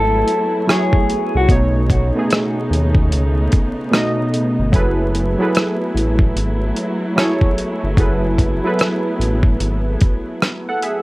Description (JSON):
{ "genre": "lo-fi hip hop", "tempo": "74 BPM", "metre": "4/4", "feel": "swing 65% on 16ths", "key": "F# dorian", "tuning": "A4 = 440 Hz", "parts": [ { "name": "electric guitar through a small old amp", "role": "melody", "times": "0.0-1.5 s", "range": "F#4 to A4", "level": "-20 LUFS", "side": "left 1 dB", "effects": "low-pass filter, analog delay" }, { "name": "warm analog keys", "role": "accompaniment", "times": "0.0-11.0 s", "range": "B2 to F#5", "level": "-20 LUFS", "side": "right 1 dB", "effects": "chorus, cassette tape, low-pass filter" }, { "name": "warm studio string section", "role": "sustained chords", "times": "0.0-11.0 s", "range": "C#3 to E4", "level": "-25 LUFS", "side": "equal", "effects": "low-pass filter" }, { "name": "round analog bass", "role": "bass", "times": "0.0-10.0 s", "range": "F#1 to D#2", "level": "-18 LUFS", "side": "equal", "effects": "none" }, { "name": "dusty soul sampler-style drum kit", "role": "drums", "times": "0.3-11.0 s", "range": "hi-hat, kick drum, rim click", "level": "-16 LUFS", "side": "equal", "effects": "overdrive, vintage 12-bit sampler grit" } ], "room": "light reverb", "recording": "vinyl crackle", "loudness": "-15 LUFS", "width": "side -19 dB against mid", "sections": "0.0-11.0 A section", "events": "none", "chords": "0.0 F#m11; 1.5 B9; 4.7 F#m11", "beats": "0.68 | 1.49 2.30 3.11 3.92 | 4.73 5.54 6.35 7.16 | 7.97 8.78 9.59 10.40" }